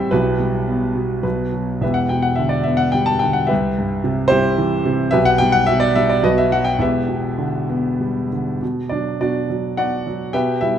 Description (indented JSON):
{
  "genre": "classical, lyrical solo piano",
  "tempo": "94-112 BPM",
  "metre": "3/4",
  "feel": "rubato",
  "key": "E minor",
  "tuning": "A4 = 441 Hz",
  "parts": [
    { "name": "warm concert grand piano", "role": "solo", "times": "0.0-10.8 s", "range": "E1 to A5", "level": "-16 LUFS", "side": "equal", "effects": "none" }
  ],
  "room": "moderate scoring stage reverb, RT60 1.6 s",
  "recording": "none",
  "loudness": "-16 LUFS",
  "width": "side -9 dB against mid",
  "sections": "0.0-8.6 A section; 8.6-10.8 B section",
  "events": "grand piano fill 1.0-1.8",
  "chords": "0.1 Em/B; 1.2 B5; 1.8 Em7; 3.5 Cmaj7; 5.1 Em9/B; 6.2 B5; 6.8 Em7; 8.6 Bm"
}